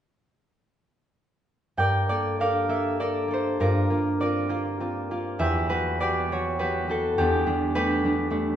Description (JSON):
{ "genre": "classical, solo harp piece", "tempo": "101 BPM", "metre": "3/4", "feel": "rubato", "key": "G dorian", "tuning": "A4 = 440 Hz", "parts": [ { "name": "concert harp", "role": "solo", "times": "1.8-8.6 s", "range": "E2 to G5", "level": "-23 LUFS", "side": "equal", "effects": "none" } ], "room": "wet recital hall reverb, RT60 1.4 s", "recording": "recorded in a church or concert hall, nothing above 10.3 kHz", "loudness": "-23 LUFS", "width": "side -10 dB against mid", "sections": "1.8-8.6 A section", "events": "none", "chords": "1.8 Gmadd9; 3.6 Bbadd9/G; 5.4 Emadd9; 7.2 Gadd9/E" }